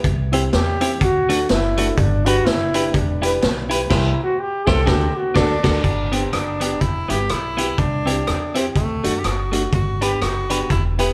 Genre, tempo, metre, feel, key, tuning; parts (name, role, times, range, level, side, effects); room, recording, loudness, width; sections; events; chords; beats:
ska; 124 BPM; 4/4; swing 59% on 8ths; G major; A4 = 444 Hz
upright bass; bass; 0.0-11.1 s; E1 to F#2; -26 LUFS; equal
vintage drum kit; drums; 0.0-11.1 s; crash cymbal, hi-hat, kick drum, rim click, snare drum; -24 LUFS; equal
clean electric guitar; accompaniment; 0.3-11.1 s; A3 to C5; -28 LUFS; equal; spring reverb
dark upright piano; stabs; 0.3-11.1 s; A3 to C5; -28 LUFS; equal
clear trombone; melody; 0.5-5.8 s; D4 to A4; -24 LUFS; equal
clear tenor saxophone; melody; 5.4-11.1 s; A3 to G4; -27 LUFS; equal
moderate stone room reverb, RT60 1.0 s; band playing live in one room; -19 LUFS; mono
0.0-5.8 A section; 5.8-11.1 B section
trombone solo 0.0-5.8; band accent 3.9-5.8
0.0 C; 1.0 D; 2.0 G; 2.9 Em; 3.9 C; 4.9 D; 5.8 G; 6.8 Em; 7.8 C; 8.8 D; 9.7 G
| 0.05 0.53 1.01 1.49 | 1.98 2.46 2.94 3.42 | 3.91 4.39 4.88 5.36 | 5.84 6.33 6.81 7.30 | 7.79 8.27 8.76 9.24 | 9.73 10.22 10.70